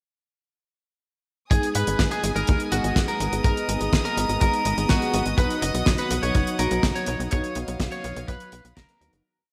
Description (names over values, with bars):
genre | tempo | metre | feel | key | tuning
italo disco | 124 BPM | 4/4 | straight | G# dorian | A4 = 440 Hz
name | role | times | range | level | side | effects
lightly driven lead guitar | melody | 1.5-9.1 s | F#4 to D#5 | -30 LUFS | equal | subtle chorus, digital delay
rich chamber string section | sustained chords | 1.5-9.2 s | B3 to D#6 | -33 LUFS | equal | none
mellow synth brass | stabs | 1.5-9.2 s | F#3 to G#4 | -33 LUFS | equal | chorus
tight sequencer bass | bass | 1.5-9.2 s | F#1 to G#2 | -30 LUFS | equal | tube saturation
damped 70s drum kit | drums | 1.5-9.2 s | hi-hat, snare drum | -30 LUFS | equal | gated reverb
kick drum | drums | 1.5-8.9 s | none | -25 LUFS | equal | none
room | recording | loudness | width
moderate lush hall reverb, RT60 2.4 s | bright 1980s-style digital production | -23 LUFS | mono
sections
1.5-9.3 verse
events
fade-out 6.7-9.3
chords
1.5 G#m; 5.4 B